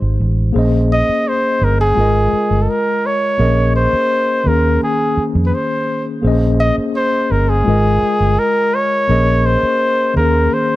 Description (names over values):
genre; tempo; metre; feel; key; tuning
lush 1970s-style soul; 84 BPM; 4/4; straight; Bb dorian; A4 = 441 Hz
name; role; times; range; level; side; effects
mellow tine electric piano; accompaniment; 0.0-10.8 s; Eb3 to Eb5; -19 LUFS; left 3 dB; fast stereo tremolo
vintage muted fingered electric bass; bass; 0.0-10.5 s; G1 to F2; -15 LUFS; right 1 dB; none
warm flugelhorn; melody; 0.9-10.8 s; Ab4 to Eb5; -16 LUFS; equal; none
room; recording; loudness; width
little or no reverb; none; -13 LUFS; side -16 dB against mid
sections
0.6-10.8 A section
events
none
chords
0.0 Abmaj7; 0.6 Bbm11; 2.0 Absus2; 3.4 Bbm11; 4.5 Eb7sus4; 6.2 Bbm11; 7.7 Absus2; 9.1 Bbm11; 10.2 Eb7sus4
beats
| 0.56 1.27 1.98 2.69 | 3.40 4.11 4.82 5.53 | 6.24 6.96 7.67 8.38 | 9.09 9.80 10.52